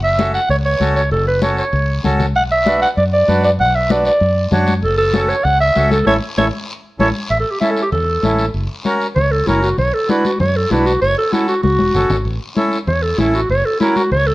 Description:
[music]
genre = latin, cumbia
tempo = 194 BPM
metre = 4/4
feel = straight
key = unclear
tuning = A4 = 441 Hz
[part]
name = growling clarinet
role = melody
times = 0.0-14.3 s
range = E4 to F#5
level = -16 LUFS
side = right 1 dB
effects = none
[part]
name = fingered electric bass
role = bass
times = 0.0-14.3 s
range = E1 to F#2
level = -18 LUFS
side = equal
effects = none
[part]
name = accordion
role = accompaniment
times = 0.2-14.0 s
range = C#4 to C#5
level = -20 LUFS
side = equal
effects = none
[part]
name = congas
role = percussion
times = 0.2-14.3 s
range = none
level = -21 LUFS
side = left 3 dB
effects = none
[part]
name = guiro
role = percussion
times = 0.2-14.3 s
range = none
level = -32 LUFS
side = left 3 dB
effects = none
[sound]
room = moderate studio reverb, RT60 1.0 s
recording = worn, warbling old tape, cassette tape, warbly pitch drift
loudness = -13 LUFS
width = side -18 dB against mid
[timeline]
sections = 0.0-7.3 A section; 7.3-14.3 B section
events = band accent 6.1-7.3; drum fill 6.7-7.3, 11.6-12.3; clarinet solo 7.3-14.3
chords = 0.0 F#m; 2.4 Bm; 4.8 F#m; 6.1 A; 8.5 F#; 9.8 Bm; 11.0 F#m; 12.3 A; 13.5 F#

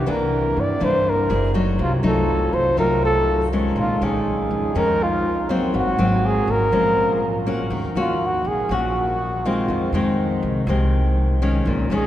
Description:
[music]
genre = bossa nova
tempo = 122 BPM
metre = 4/4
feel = straight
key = unclear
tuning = A4 = 440 Hz
[part]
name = breathy flugelhorn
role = melody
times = 0.0-12.1 s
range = F4 to D5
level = -22 LUFS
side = right 1 dB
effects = none
[part]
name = nylon-string guitar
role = accompaniment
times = 0.0-12.1 s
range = F2 to Ab4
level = -22 LUFS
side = left 1 dB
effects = none
[part]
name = mellow French horn section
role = sustained chords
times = 0.0-7.7 s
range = C3 to Gb4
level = -32 LUFS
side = equal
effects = none
[part]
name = upright bass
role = bass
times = 0.0-12.1 s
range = Gb1 to G2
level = -24 LUFS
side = equal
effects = none
[sound]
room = wet cathedral reverb, RT60 6.6 s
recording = recorded in a church or concert hall, lossy compression artefacts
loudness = -18 LUFS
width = side -12 dB against mid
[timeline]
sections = 0.0-7.7 A section; 7.7-12.1 B section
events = flugelhorn solo 7.7-12.1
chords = 0.0 C9; 1.3 Gb9; 1.8 F7b9/C; 3.8 Bbm11; 5.7 Ab9; 6.7 Bbm7; 7.7 Ebm7; 9.7 Fm7

